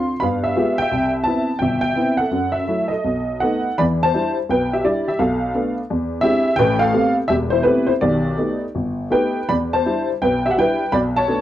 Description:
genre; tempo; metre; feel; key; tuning
solo jazz; 159-176 BPM; 4/4; swing 65% on 8ths, rubato; unclear; A4 = 441 Hz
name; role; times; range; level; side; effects
honky-tonk upright piano; solo; 0.0-11.4 s; E1 to C6; -17 LUFS; equal; none
room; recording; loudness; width
moderate studio reverb, RT60 0.6 s; dark, warm production; -17 LUFS; side -12 dB against mid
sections
0.0-3.8 A section; 3.8-11.4 B section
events
none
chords
0.2 G7b9; 0.9 Cmaj7; 2.3 F#m7; 3.0 B7; 3.8 Em7; 5.2 Bm7b5; 5.9 E7alt; 6.6 Am9; 8.0 B7alt; 9.5 Em7

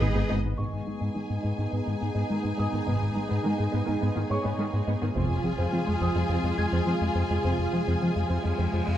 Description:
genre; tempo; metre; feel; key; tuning
cinematic, hybrid orchestral and electronic film score; 105 BPM; 4/4; straight; unclear; A4 = 439 Hz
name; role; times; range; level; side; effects
rich symphonic violin section; second line; 0.0-9.0 s; G#4 to G#5; -35 LUFS; left 3 dB; none
warm symphonic viola section; accompaniment; 0.0-9.0 s; D#3 to F4; -33 LUFS; right 4 dB; low-pass filter
mellow French horn section; sustained chords; 0.0-8.8 s; G#3 to G#4; -43 LUFS; left 4 dB; none
warm analog pad; sustained chords; 0.0-9.0 s; C3 to F5; -34 LUFS; left 2 dB; chorus, low-pass filter
woody wave-folded pluck; arpeggios; 0.0-9.0 s; F3 to G#4; -36 LUFS; right 3 dB; chorus, low-pass filter, tape echo
round analog bass; riff; 0.0-9.0 s; F2 to G#3; -28 LUFS; left 1 dB; low-pass filter
rich symphonic cello section; bass; 0.0-8.9 s; F2 to G#4; -37 LUFS; right 2 dB; none
sub bass with octave; bass; 0.0-0.6 s; G#1; -30 LUFS; equal; none
warm symphonic double bass section; bass; 0.0-7.6 s; F1 to G#1; -34 LUFS; right 3 dB; none
warm concert grand piano; texture; 0.0-9.0 s; C#5 to Ab6; -40 LUFS; equal; tape echo
taiko ensemble; drums; 0.6-1.7, 5.2-6.3 s; none; -40 LUFS; equal; none
cymbal swell; sound effects; 8.5-9.0 s; none; -44 LUFS; equal; none
room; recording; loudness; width
light reverb; close, detailed microphones; -25 LUFS; side -11 dB against mid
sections
0.6-9.0 A section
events
filter sweep 0.6-9.0; cymbal swell 8.5-9.0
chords
0.0 G#m; 5.2 Fm

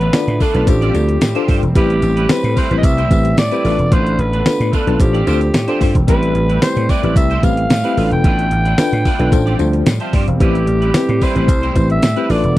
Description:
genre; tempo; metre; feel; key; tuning
early-eighties boogie funk; 111 BPM; 4/4; straight; A minor; A4 = 440 Hz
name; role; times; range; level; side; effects
growling alto saxophone; melody; 0.0-12.6 s; G4 to G5; -20 LUFS; equal; none
warm analog pad; sustained chords; 0.0-12.6 s; D3 to C4; -26 LUFS; right 3 dB; chorus
clean electric guitar; riff; 0.0-12.6 s; G3 to D5; -26 LUFS; right 4 dB; ensemble chorus
vintage slap bass; bass; 0.0-12.5 s; E1 to A2; -16 LUFS; equal; none
clean 12-bit digital drum machine; drums; 0.0-12.6 s; hi-hat, kick drum, snare drum; -15 LUFS; equal; none
FM electric piano with auto-pan; accompaniment; 0.1-12.6 s; E3 to A5; -20 LUFS; left 3 dB; none
tambourine; percussion; 0.1-12.6 s; none; -36 LUFS; left 25 dB; none
room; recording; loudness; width
little or no reverb; dry, close 1970s-style studio recording; -12 LUFS; side -16 dB against mid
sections
0.0-12.6 A section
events
none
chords
0.0 Bm7b5; 0.7 G7sus4/A; 1.8 Am9; 3.6 Bm7b5; 5.0 G7sus4/A; 6.1 Am9; 8.0 Bm7b5; 9.3 G7sus4/A; 10.4 Am9

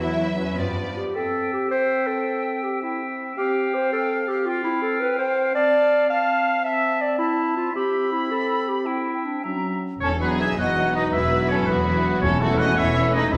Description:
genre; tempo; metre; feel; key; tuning
cinematic; 109 BPM (dotted quarters); 6/8; straight; C major; A4 = 440 Hz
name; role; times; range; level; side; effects
rich symphonic violin section; melody; 0.0-1.0, 10.0-13.4 s; F#4 to E5; -32 LUFS; equal; none
warm symphonic violin section; second line; 0.0-1.0, 10.2-13.4 s; B3 to B4; -34 LUFS; equal; none
warm studio viola section; accompaniment; 0.0-1.0, 10.2-13.4 s; E3 to A3; -30 LUFS; equal; none
rich symphonic double bass section; bass; 0.0-1.0, 10.0-13.4 s; E1 to G2; -29 LUFS; equal; none
warm symphonic cello section; bass; 0.0-1.2, 10.0-13.4 s; E2 to E4; -33 LUFS; equal; none
clear clarinet; second line; 0.6-10.0 s; C#4 to F5; -25 LUFS; equal; none
warm oboe; second line; 1.1-13.4 s; A4 to G#5; -30 LUFS; equal; none
bright silver concert flute; second line; 1.2-13.4 s; A4 to B5; -32 LUFS; equal; none
mellow French horn section; sustained chords; 1.2-13.4 s; F#3 to A4; -33 LUFS; equal; none
warm trumpet; stabs; 10.0-13.4 s; A3 to G#4; -29 LUFS; equal; none
timpani; percussion; 12.2-13.4 s; E2; -29 LUFS; equal; none
room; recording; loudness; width
wet recital hall reverb, RT60 1.6 s; recorded in a church or concert hall; -22 LUFS; mono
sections
0.0-1.2 A section; 1.2-10.0 B section; 10.0-13.4 A section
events
none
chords
0.0 Esus2; 0.6 G7; 1.2 C; 9.4 F#7; 10.0 B/E; 11.1 Esus2; 12.2 A/E

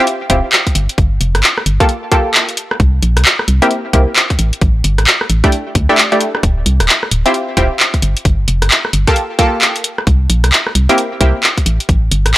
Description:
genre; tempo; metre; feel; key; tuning
UK garage, two-step garage; 132 BPM; 4/4; swing 62% on 16ths; D minor; A4 = 439 Hz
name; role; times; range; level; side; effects
punchy chord stab; stabs; 0.0-11.3 s; A3 to A4; -15 LUFS; equal; chorus, tape echo
punchy analog drum machine; drums; 0.1-12.4 s; handclaps, hi-hat, rim click; -12 LUFS; equal; none
organ-like FM bass; bass; 0.3-12.3 s; D1 to D2; -13 LUFS; equal; sidechain pumping
electronic kick drum; drums; 0.3-12.0 s; none; -14 LUFS; equal; overdrive
room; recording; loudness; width
digital ambience; dry, gritty hardware recording; -10 LUFS; side -16 dB against mid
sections
0.0-12.4 A section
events
none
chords
0.0 Dm11; 0.8 Gm9; 2.6 C7; 4.4 A7sus4; 6.4 Dm11; 8.0 Gm9; 9.8 C7; 11.7 A7(no3)

